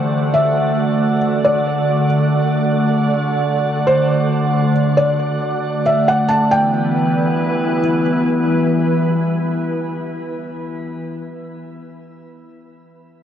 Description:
hip hop; free time; E minor; A4 = 440 Hz
glassy FM pad; sustained chords; 0.0-10.8 s; D3 to F#5; -17 LUFS; equal; ensemble chorus, built-in reverb
wind-like tuned noise texture; texture; 0.0-10.8 s; F#3 to E5; -30 LUFS; right 1 dB; built-in reverb
felt-muted upright piano; melody; 0.3-7.8 s; C5 to A5; -19 LUFS; left 1 dB; tape echo
moderate shimmer reverb, RT60 5.5 s; worn, warbling old tape, cassette tape, warbly pitch drift; -14 LUFS; side -9 dB against mid
0.0-6.5 A section; 6.5-10.0 B section
0.0 D; 6.5 Emadd9
free time

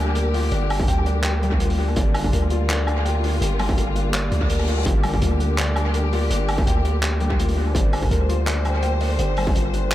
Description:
half-time drum and bass; 166 BPM; 4/4; swing 53% on 16ths, half-time; A4 = 440 Hz
warm studio string section; sustained chords; 0.0-9.9 s; D3 to C5; -27 LUFS; left 1 dB; sidechain pumping
felt-muted upright piano; arpeggios; 0.0-9.9 s; G3 to G5; -28 LUFS; left 4 dB; tape echo
long sustained 808-style bass; bass; 0.0-9.9 s; G1 to D2; -22 LUFS; equal
crunchy breakbeat drum kit; drums; 0.2-9.9 s; handclaps, hi-hat, woodblock; -28 LUFS; right 1 dB; dub echo
electronic kick drum; drums; 0.8-9.5 s; -22 LUFS; equal; distortion
reverse cymbal; sound effects; 4.3-4.9 s; -32 LUFS; left 5 dB
light reverb, small room ambience; echo-heavy mix; -18 LUFS; side -14 dB against mid
0.0-9.9 A section
reverse cymbal 4.3-4.9
0.0 Gm
0.16 | 0.52 0.88 1.24 1.60 | 1.97 2.33 2.69 3.05 | 3.41 3.77 4.13 4.50 | 4.86 5.22 5.58 5.94 | 6.30 6.67 7.03 7.39 | 7.75 8.11 8.47 8.83 | 9.20 9.56 9.92

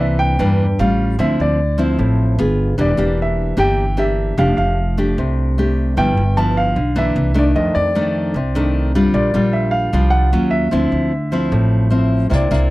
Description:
bossa nova; 151 BPM; 4/4; straight; D minor; A4 = 440 Hz
warm grand piano; melody; 0.0-12.7 s; D5 to A5; -21 LUFS; right 1 dB
nylon-string guitar; accompaniment; 0.0-12.7 s; F2 to Ab4; -18 LUFS; left 1 dB
upright bass; bass; 0.0-12.7 s; E1 to F2; -18 LUFS; equal
jazz brush drum kit; drums; 12.3-12.6 s; kick drum, snare drum; -22 LUFS; equal
light reverb; dry, close 1970s-style studio recording; -14 LUFS; side -18 dB against mid
0.0-12.7 A section
0.0 C9; 0.8 Aaug7; 1.2 Dm9; 2.4 G7b9; 2.8 Em7b5; 4.4 F69; 6.0 G6; 7.2 C9; 7.6 F13; 9.1 Bb6; 10.3 Ebm9; 10.7 Dm9
0.00 0.40 0.80 | 1.20 1.59 1.99 2.39 | 2.79 3.19 3.58 3.98 | 4.38 4.78 5.17 5.57 | 5.97 6.36 6.76 7.16 | 7.55 7.95 8.35 8.74 | 9.14 9.54 9.94 10.33 | 10.73 11.12 11.52 11.92 | 12.31

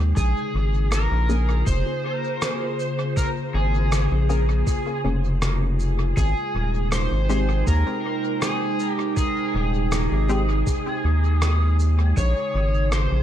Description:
ambient dub; 80 BPM; 4/4; straight; Bb dorian; A4 = 440 Hz
warbly tape-like pad; sustained chords; 0.0-13.2 s; C3 to G5; -28 LUFS; right 1 dB; chorus, built-in reverb
round analog bass; bass; 0.0-13.2 s; Eb1 to Eb2; -20 LUFS; equal
overdriven slide guitar; melody; 0.2-13.2 s; Ab4 to Db5; -27 LUFS; equal; dub echo
electronic kick drum; drums; 0.2-12.3 s; -24 LUFS; equal
electronic shaker and rim click; drums; 0.2-13.1 s; -31 LUFS; equal; dub echo
filtered dub chord stab; stabs; 1.3-10.4 s; Ab3 to Ab4; -32 LUFS; left 3 dB; chorus, dub echo
little or no reverb; echo-heavy mix; -20 LUFS; side -11 dB against mid
0.0-13.2 A section
0.2 Bbm7; 6.2 Abmaj7; 12.2 Bbm7
| 0.17 0.92 1.67 2.42 | 3.17 3.92 4.67 5.42 | 6.17 6.92 7.67 8.42 | 9.17 9.92 10.67 11.42 | 12.17 12.92

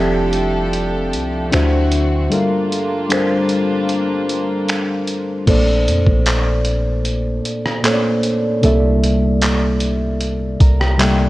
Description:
contemporary R&B; 76 BPM; 4/4; straight; A4 = 438 Hz
muted felt-like synth keys; accompaniment; 0.0-11.3 s; Bb2 to Bb5; -17 LUFS; equal; chorus
warm studio string section; sustained chords; 0.0-5.4 s; D3 to A4; -25 LUFS; right 1 dB
warm 808-style bass; bass; 0.0-11.3 s; F1 to F2; -18 LUFS; equal
dusty soul sampler-style drum kit; drums; 0.3-11.2 s; crash cymbal, finger snaps, handclaps, hi-hat, kick drum, rim click; -20 LUFS; equal
light reverb; worn, warbling old tape, cassette tape, warbly pitch drift; -14 LUFS; side -17 dB against mid
0.0-5.5 A section; 5.5-11.3 B section
kick muted 2.3-5.5; synth keys fill 10.2-11.3
0.0 F69; 1.5 D7; 2.3 Gm7; 5.5 Bbmaj9; 8.6 C13
0.74 1.52 | 2.31 3.10 3.89 4.68 | 5.47 6.26 7.05 7.84 | 8.63 9.42 10.21 11.00

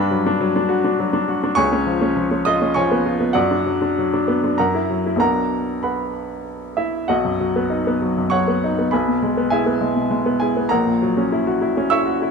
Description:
classical, virtuoso piano study; 100 BPM; 3/4; rubato; B minor, B major from 7.1 s; A4 = 440 Hz
clear baby grand piano; solo; 0.0-12.3 s; A#1 to E6; -17 LUFS; equal
moderate large studio reverb, RT60 1.4 s; close, detailed microphones; -17 LUFS; side -5 dB against mid
0.0-7.1 A section; 7.1-12.3 B section
0.0 Gmaj7; 1.6 C#7; 3.4 Bm/F#; 4.6 F#7; 5.2 Bm; 7.1 B; 8.9 E/B; 10.7 F#7/A#
0.40 0.99 | 1.58 2.17 2.77 | 3.36 3.97 4.58 | 5.20 5.83 6.47 | 7.09 7.70 8.33 | 8.93 9.53 10.13 | 10.72 11.32 11.93

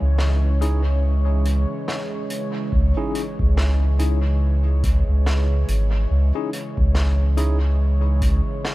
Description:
ambient dub; 71 BPM; 4/4; swing 59% on 16ths; C# minor; A4 = 441 Hz
warbly tape-like pad; sustained chords; 0.0-8.7 s; C#3 to C#5; -29 LUFS; equal; chorus, built-in reverb
soft dub sub bass; bass; 0.0-8.4 s; G#1 to C#2; -18 LUFS; equal
bubbling stepped-filter texture; texture; 0.0-2.7 s; C#4 to C#5; -37 LUFS; left 2 dB
raw garage drum kit; drums; 0.2-8.7 s; hi-hat, snare drum; -32 LUFS; equal; dub echo
tine electric piano; stabs; 0.6-7.6 s; C#4 to G#4; -31 LUFS; left 2 dB; slow stereo tremolo, dub echo
electronic kick drum; drums; 2.7-8.4 s; -23 LUFS; equal
small room ambience; -18 LUFS; side -18 dB against mid
0.0-2.7 A section; 2.7-8.7 B section
break 0.0-2.7
0.0 C#m; 2.7 C#madd9
0.19 1.03 1.88 | 2.73 3.57 4.42 5.26 | 6.11 6.95 7.79 8.64

